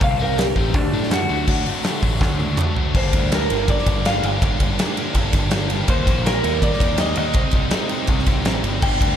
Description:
indie rock; 164 BPM; 4/4; straight; G minor; A4 = 440 Hz
electric guitar through a small old amp; melody; 0.0-9.2 s; D4 to G5; -24 LUFS; equal
thick fuzz guitar; riff; 0.0-9.2 s; G2 to F#4; -28 LUFS; right 5 dB; distortion, analog chorus, slapback echo
growling picked electric bass; bass; 0.0-9.2 s; G1 to A2; -24 LUFS; equal; overdrive
big rock drum kit; drums; 0.0-9.1 s; crash cymbal, hi-hat, kick drum, ride cymbal, snare drum, toms; -20 LUFS; equal
scooped high-gain guitar; riff; 0.2-9.2 s; G2 to Eb4; -27 LUFS; left 8 dB; distortion, slapback echo
group handclap; percussion; 0.4-2.7 s; -36 LUFS; right 6 dB
moderate lush hall reverb, RT60 1.9 s, studio reverb; big arena sound; -17 LUFS; side -9 dB against mid
0.0-1.5 A section; 1.5-3.0 B section; 3.0-9.2 C section
clean electric guitar solo 0.0-1.5; drum fill 2.2-3.0
0.0 Cm; 0.8 D; 3.0 Gm; 5.9 Ebmaj7; 7.4 Cm

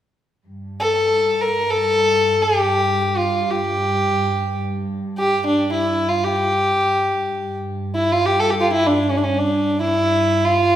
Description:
Turkish makam ensemble; free time; G makam nikriz; A4 = 439 Hz
warm studio cello section; drone; 0.5-10.8 s; G2; -26 LUFS; right 1 dB
rich violin; melody; 0.8-10.8 s; C#4 to Bb4; -17 LUFS; equal
wet recital hall reverb, RT60 1.5 s; heard from further back in the room; -17 LUFS; side -11 dB against mid
0.4-10.8 A section

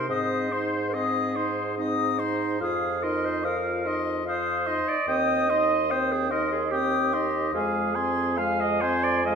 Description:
classical, slow romantic movement for wind quintet; 72 BPM; 3/4; rubato; A4 = 440 Hz
bright silver concert flute; melody; 0.0-9.4 s; Ab5 to Eb6; -31 LUFS; left 8 dB
clear oboe; second line; 0.0-9.4 s; C5 to Ab5; -30 LUFS; left 3 dB
clear clarinet; accompaniment; 0.0-9.4 s; Eb4 to F5; -28 LUFS; right 5 dB
dark French horn; accompaniment; 0.0-9.4 s; Ab3 to F4; -32 LUFS; equal
mellow bassoon; bass; 0.0-9.4 s; Eb2 to Ab2; -30 LUFS; right 1 dB
wet recital hall reverb, RT60 1.3 s; minimal, uncompressed stereo recording; -23 LUFS; side -6 dB against mid
0.0-9.4 A section
0.1 Ab; 2.6 F5; 5.1 Cm/Eb; 7.5 Fm

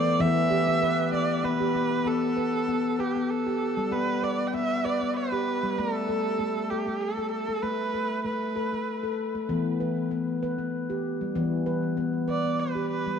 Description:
world meditative, meditative tuned percussion; 97 BPM; 3/4; straight; E minor pentatonic; A4 = 441 Hz
rich erhu; melody; 0.0-9.1, 12.3-13.2 s; G4 to G5; -28 LUFS; right 4 dB; ping-pong delay
handpan; arpeggios; 0.0-13.2 s; E3 to B4; -27 LUFS; left 2 dB; ping-pong delay
wet echo chamber reverb, RT60 2.0 s; dark, warm production; -25 LUFS; side -7 dB against mid
0.0-2.1 A section; 2.1-13.2 B section
0.2 Em; 2.1 Gadd9; 5.8 N.C.; 9.5 Em

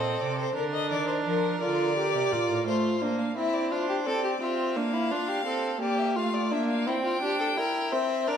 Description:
classical, baroque-style fugue for string quartet; 57 BPM (dotted quarters); 12/8; straight; A4 = 440 Hz
clear violin; melody; 0.0-8.4 s; Bb4 to G5; -30 LUFS; left 6 dB
clear violin; second line; 0.0-8.4 s; D4 to C5; -30 LUFS; left 2 dB
clear viola; accompaniment; 0.0-8.4 s; A3 to G4; -29 LUFS; right 4 dB
rich cello; bass; 0.0-2.7 s; A2 to F3; -33 LUFS; right 5 dB
wet recital hall reverb, RT60 1.5 s; -25 LUFS; side -8 dB against mid
0.0-8.4 A section
0.0 F7 (rootless); 0.6 Bb/D; 2.7 F/A; 6.9 C7

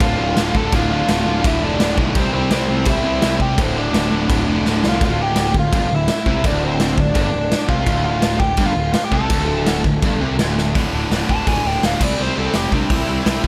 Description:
punk rock; 167 BPM; 4/4; straight; D minor; A4 = 440 Hz
dark smooth lead guitar; melody; 0.0-13.5 s; C4 to A5; -25 LUFS; equal; overdrive, digital delay
crunchy overdriven guitar; riff; 0.0-10.7 s; D2 to C4; -29 LUFS; equal
distorted electric guitar; riff; 0.0-13.5 s; D2 to C4; -28 LUFS; equal; overdrive
distorted electric guitar; riff; 0.0-13.5 s; D2 to C4; -28 LUFS; equal; distortion
fuzz picked electric bass; bass; 0.0-13.5 s; D1 to C2; -25 LUFS; equal; overdrive
raw garage drum kit; drums; 0.0-13.5 s; crash cymbal, hi-hat, kick drum, snare drum; -22 LUFS; equal
little or no reverb; -18 LUFS; mono
0.0-5.0 A section; 5.0-10.7 B section; 10.7-13.5 C section
drum fill 4.7-5.0, 10.6; lead electric guitar solo 10.7-13.5
0.0 Dm; 2.2 C; 3.6 D5; 5.0 Dm; 10.7 D5; 12.0 C

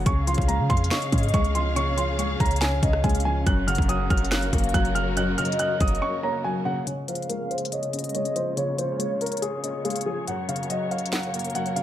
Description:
hip hop, trap; 141 BPM; 4/4; half-time; Db major; A4 = 440 Hz
felt-muted upright piano; accompaniment; 0.0-11.8 s; Gb2 to Db5; -29 LUFS; left 4 dB; low-pass filter
dark symphonic string section; sustained chords; 0.0-11.8 s; Gb2 to F5; -33 LUFS; equal; low-pass filter
clean 808-style bass; bass; 0.0-6.0 s; Gb1 to Db3; -25 LUFS; equal
dark concert grand piano; melody; 0.1-11.8 s; Ab4 to Gb6; -29 LUFS; right 2 dB; low-pass filter, tape echo
trap drum kit; drums; 0.1-11.8 s; hi-hat, kick drum, rim click, snare drum; -26 LUFS; equal
warm velvety synth lead; second line; 0.3-11.8 s; Db5 to Ab5; -32 LUFS; right 1 dB; chorus, tape echo
light reverb, small room ambience; -22 LUFS; side -12 dB against mid
0.0-6.9 A section; 6.9-11.8 B section
break 6.0-6.9; filter sweep 6.9-11.8
0.1 Db; 3.5 Gb; 6.9 Db; 10.3 Gb

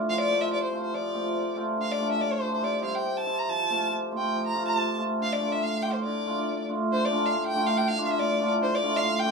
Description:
klezmer; 141 BPM; 2/4; straight; D minor; A4 = 438 Hz
cimbalom; accompaniment; 0.0-9.3 s; A2 to F4; -27 LUFS; equal
rich violin; melody; 0.1-9.3 s; C5 to Bb5; -28 LUFS; left 1 dB
wet small room reverb, RT60 0.5 s; minimal, uncompressed stereo recording; -24 LUFS; side -4 dB against mid
0.1-6.9 A section; 6.9-9.3 B section
0.1 F; 1.8 Dm; 2.6 C; 3.5 F; 5.2 Dm

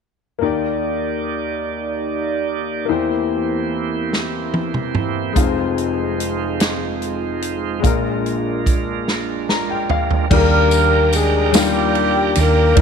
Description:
slow gospel; 48 BPM (dotted quarters); 6/8; straight; Eb major; A4 = 437 Hz
clear concert grand piano; accompaniment; 0.4-12.8 s; F1 to Bb5; -22 LUFS; left 9 dB
bright tonewheel organ; sustained chords; 0.4-12.8 s; E3 to Bb5; -25 LUFS; right 12 dB; slow rotary speaker
dark French horn section; sustained chords; 0.4-10.3 s; E3 to D5; -27 LUFS; right 2 dB
natural country drum kit; drums; 4.1-12.8 s; crash cymbal, hi-hat, kick drum, ride cymbal, snare drum, toms; -20 LUFS; right 2 dB
dark horn section; melody; 10.3-12.8 s; G3 to Bb4; -16 LUFS; left 1 dB
hollow-body short-scale fingered electric bass; bass; 10.3-12.8 s; Eb2 to E2; -18 LUFS; right 2 dB
tambourine; percussion; 10.7-12.7 s; -28 LUFS; left 12 dB
light reverb, studio reverb; 1960s-style stereo with parts hard left and right; -16 LUFS; side -6 dB against mid
0.4-10.3 A section; 10.3-12.8 B section
drum fill 4.1-5.4, 9.1-10.3; grand piano fill 9.1-10.3
0.4 Ebmaj7; 2.9 C7/E; 5.4 Fm7; 7.8 Bb7; 10.3 Ebmaj7

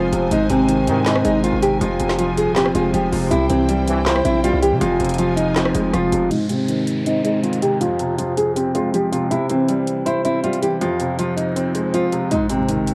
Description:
hip hop, trap; 160 BPM; 4/4; half-time; F minor; A4 = 444 Hz
nylon-string guitar; melody; 0.0-12.9 s; C4 to Ab4; -23 LUFS; equal; low-pass filter, cassette tape, tape echo
warm baby grand piano; accompaniment; 0.0-12.9 s; F2 to C5; -23 LUFS; equal; low-pass filter, cassette tape
warm studio string section; sustained chords; 0.0-6.3 s; Eb4 to Ab5; -31 LUFS; equal; cassette tape
hard-hitting 808-style bass; bass; 0.0-6.3 s; Eb1 to C3; -26 LUFS; equal
trap drum kit; drums; 0.1-12.9 s; handclaps, hi-hat, rim click, snare drum; -29 LUFS; equal; cassette tape
mellow brass ensemble; stabs; 0.9-1.0, 3.9-4.0 s; C2 to E3; -29 LUFS; equal; cassette tape
downlifter, swell and impact; sound effects; 6.3-12.9 s; -36 LUFS; equal
light reverb, small room ambience; home recording on cassette, vinyl crackle; -19 LUFS; mono
0.0-6.3 A section; 6.3-12.3 B section
filter sweep 6.3-12.3; kick muted 12.3-12.9; impact 12.3-12.9
0.3 Ab; 1.8 Fm; 3.3 C; 4.8 Fm; 6.3 Ab; 7.8 Fm; 9.3 C; 10.8 Fm; 12.3 Ab

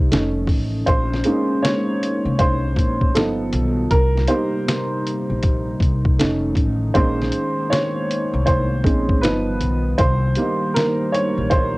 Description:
lo-fi hip hop; 79 BPM; 4/4; swing 63% on 16ths; Bb dorian; A4 = 440 Hz
warm upright piano; accompaniment; 0.0-11.8 s; F3 to Db5; -21 LUFS; right 1 dB; cassette tape, low-pass filter, plate reverb
dark analog pad; sustained chords; 0.0-11.8 s; C3 to F4; -26 LUFS; left 1 dB; chorus, low-pass filter, cassette tape
upright bass; bass; 0.0-11.8 s; F1 to C2; -22 LUFS; equal
dusty soul sampler-style drum kit; drums; 0.1-11.7 s; hi-hat, kick drum, snare drum; -20 LUFS; equal; cassette tape
light reverb; home recording on cassette; -17 LUFS; side -21 dB against mid
0.0-11.8 A section
upright piano solo 0.0-11.8
0.1 Faug7; 0.9 Bbm11; 3.2 G7b13; 3.9 Cm7; 6.2 Faug7; 7.0 Bbm11; 9.2 G7b13; 10.0 Cm7

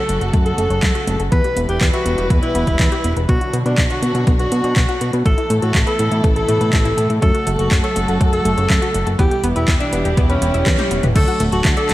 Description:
italo disco; 122 BPM; 4/4; straight; A4 = 440 Hz
breathy alto saxophone; melody; 0.0-11.9 s; C#4 to B4; -22 LUFS; equal; ping-pong delay, shimmer reverb
dark studio string section; sustained chords; 0.0-11.9 s; B2 to B4; -23 LUFS; equal; shimmer reverb
analog pluck; arpeggios; 0.1-11.9 s; A3 to E5; -25 LUFS; left 2 dB; chorus, cassette tape, ping-pong delay, shimmer reverb
fat analog bass; bass; 0.1-11.9 s; D1 to B2; -20 LUFS; equal
house drum kit; drums; 0.1-11.9 s; crash cymbal, handclaps, hi-hat, toms; -23 LUFS; equal; overdrive, gated reverb
electronic kick drum; drums; 0.3-11.7 s; -17 LUFS; equal; overdrive
light reverb; vinyl crackle; -14 LUFS; side -16 dB against mid
0.0-11.2 A section
filter sweep on synth arpeggio sound 0.0-11.2; drum fill 10.7-11.2; band accent 10.7
0.0 F#m; 1.3 Em; 3.3 Bm; 5.3 Asus2; 7.2 F#m; 9.2 Em; 11.2 D

